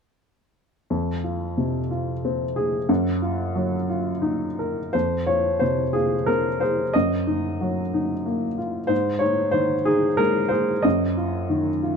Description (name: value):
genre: neoclassical minimalist piano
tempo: 91 BPM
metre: 3/4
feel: rubato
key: unclear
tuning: A4 = 436 Hz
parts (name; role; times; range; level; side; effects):
- warm upright piano; solo; 0.9-12.0 s; F2 to Eb5; -21 LUFS; equal; none
room: light reverb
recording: dark, warm production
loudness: -21 LUFS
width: side -6 dB against mid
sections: 0.9-4.9 A section; 4.9-12.0 B section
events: none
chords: 0.9 Fm; 2.9 Ebmadd9/Gb; 4.9 Fm; 6.9 Ebmadd9/Gb; 8.9 Ab5; 10.8 Ebmadd9/Gb